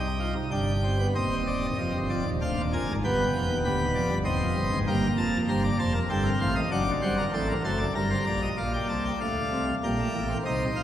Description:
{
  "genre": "classical, baroque-style 4-part fugue for pipe organ",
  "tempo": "97 BPM",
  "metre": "3/4",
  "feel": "straight",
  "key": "C minor",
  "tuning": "A4 = 440 Hz",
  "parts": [
    { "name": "pipe organ, plenum", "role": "solo", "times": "0.0-10.8 s", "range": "D1 to C6", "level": "-24 LUFS", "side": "equal", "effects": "none" }
  ],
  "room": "wet church reverb, RT60 4.0 s",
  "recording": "heard from further back in the room",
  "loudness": "-24 LUFS",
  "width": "side -11 dB against mid",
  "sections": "0.0-1.2 A section; 1.2-8.6 B section; 8.6-10.8 A section",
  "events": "none",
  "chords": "0.0 Cm; 0.5 G; 1.2 Cm/Eb; 2.4 Dm7b5; 3.0 G7; 4.3 Cm/Eb; 4.9 Gm; 6.1 Am7b5/G; 6.7 D7/F#; 8.0 Gm; 8.6 Bb; 9.8 Gm/Bb"
}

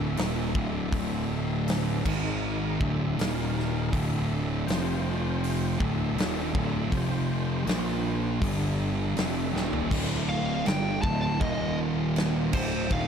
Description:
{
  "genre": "stoner and doom metal",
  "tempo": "80 BPM",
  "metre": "4/4",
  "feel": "straight",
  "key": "unclear",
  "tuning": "A4 = 440 Hz",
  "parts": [
    { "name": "tonewheel organ", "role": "sustained chords", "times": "0.0-13.1 s", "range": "D3 to G5", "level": "-39 LUFS", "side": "left 1 dB", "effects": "slow rotary speaker, chorus vibrato" },
    { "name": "thick fuzz guitar", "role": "riff", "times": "0.0-13.1 s", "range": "D2 to Bb3", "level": "-32 LUFS", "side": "left 10 dB", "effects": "distortion" },
    { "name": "thick fuzz guitar", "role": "riff", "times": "0.0-13.1 s", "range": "D2 to Bb3", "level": "-31 LUFS", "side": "right 10 dB", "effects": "distortion" },
    { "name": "fuzz picked electric bass", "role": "bass", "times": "0.0-13.1 s", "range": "D1 to Bb1", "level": "-31 LUFS", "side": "equal", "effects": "overdrive" },
    { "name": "big rock drum kit", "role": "drums", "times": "0.2-13.1 s", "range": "crash cymbal, hi-hat, kick drum, snare drum, toms", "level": "-32 LUFS", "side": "equal", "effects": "none" },
    { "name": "thick fuzz guitar", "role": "riff", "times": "9.9-13.1 s", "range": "D2 to G3", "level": "-36 LUFS", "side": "equal", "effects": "none" },
    { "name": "fuzz lead guitar", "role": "melody", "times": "10.3-13.1 s", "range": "C5 to A5", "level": "-32 LUFS", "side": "equal", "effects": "distortion, digital delay" }
  ],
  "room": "little or no reverb",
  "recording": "dark, warm production",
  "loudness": "-25 LUFS",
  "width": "side -7 dB against mid",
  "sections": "0.0-9.9 A section; 9.9-13.1 B section",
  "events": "drum fill 9.5-9.9; lead electric guitar solo 9.9-13.1",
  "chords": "0.0 D5; 2.0 G#5; 2.8 D5; 3.2 Eb5; 3.9 D5; 4.7 F5; 5.8 D5; 6.9 F5; 7.7 Bb5; 8.4 G5; 9.2 Dm; 9.9 D5; 11.4 Eb5; 12.5 D5"
}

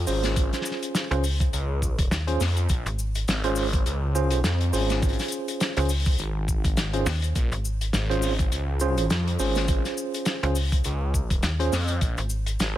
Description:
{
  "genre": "glitch hop",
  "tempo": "103 BPM",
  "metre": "4/4",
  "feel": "swing 56% on 16ths",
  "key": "Bb minor",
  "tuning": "A4 = 440 Hz",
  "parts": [
    { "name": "phased detuned saw bass", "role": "bass", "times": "0.0-12.8 s", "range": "Ab1 to F2", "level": "-26 LUFS", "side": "equal", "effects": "phaser" },
    { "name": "warm soul drum kit", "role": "drums", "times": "0.0-12.7 s", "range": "hi-hat, snare drum", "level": "-29 LUFS", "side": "left 2 dB", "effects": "none" },
    { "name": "tine electric piano", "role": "stabs", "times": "0.1-11.7 s", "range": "Db4 to C5", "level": "-29 LUFS", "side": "right 3 dB", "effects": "fast stereo tremolo, sidechain pumping, digital delay" },
    { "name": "cabasa", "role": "percussion", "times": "0.1-12.7 s", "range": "none", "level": "-38 LUFS", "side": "left 4 dB", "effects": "none" },
    { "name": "electronic kick drum", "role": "drums", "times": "0.4-12.1 s", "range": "none", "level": "-24 LUFS", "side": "equal", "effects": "none" },
    { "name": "slap-like FM bass", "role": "bass", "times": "1.1-12.6 s", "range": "Ab1 to Eb2", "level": "-25 LUFS", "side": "equal", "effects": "none" }
  ],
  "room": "small room ambience",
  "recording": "vinyl crackle",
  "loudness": "-22 LUFS",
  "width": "side -13 dB against mid",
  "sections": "0.0-12.8 A section",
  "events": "none",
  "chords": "0.0 Bbm7 (rootless)"
}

